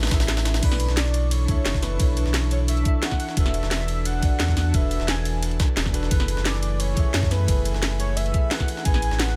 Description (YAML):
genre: liquid drum and bass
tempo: 175 BPM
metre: 4/4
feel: straight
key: B dorian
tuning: A4 = 440 Hz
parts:
  - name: warm velvety synth lead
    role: melody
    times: 0.0-9.4 s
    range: B4 to G#5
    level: -34 LUFS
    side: equal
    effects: chorus, dub echo
  - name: bell-like tine electric piano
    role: accompaniment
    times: 0.0-9.4 s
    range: C#4 to E5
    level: -35 LUFS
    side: equal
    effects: digital delay
  - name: airy breathy pad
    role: sustained chords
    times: 0.0-9.4 s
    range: E3 to C#6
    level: -37 LUFS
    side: equal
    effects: chorus, sidechain pumping
  - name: sub bass with octave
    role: bass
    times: 0.0-9.4 s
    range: E1 to F#2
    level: -26 LUFS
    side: equal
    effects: none
  - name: drum and bass drum kit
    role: drums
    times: 0.0-9.3 s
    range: crash cymbal, hi-hat, snare drum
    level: -30 LUFS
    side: equal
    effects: none
  - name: jungle sampler-style drum kit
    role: drums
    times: 0.0-9.4 s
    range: hi-hat, ride cymbal, snare drum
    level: -34 LUFS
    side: equal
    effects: high-pass filter on cymbals, high-pass filter on snare, high-pass filter on hats, high-pass filter on room
  - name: electronic kick drum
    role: drums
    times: 0.1-8.9 s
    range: none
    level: -24 LUFS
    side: equal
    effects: none
room: little or no reverb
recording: none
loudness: -22 LUFS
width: mono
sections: 0.6-9.4 A section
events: kick drops out 0.3-0.6; drop 0.6-9.4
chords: 0.0 Amaj9; 0.6 Bm11; 3.4 E7sus4; 6.1 F#m11; 8.9 Amaj9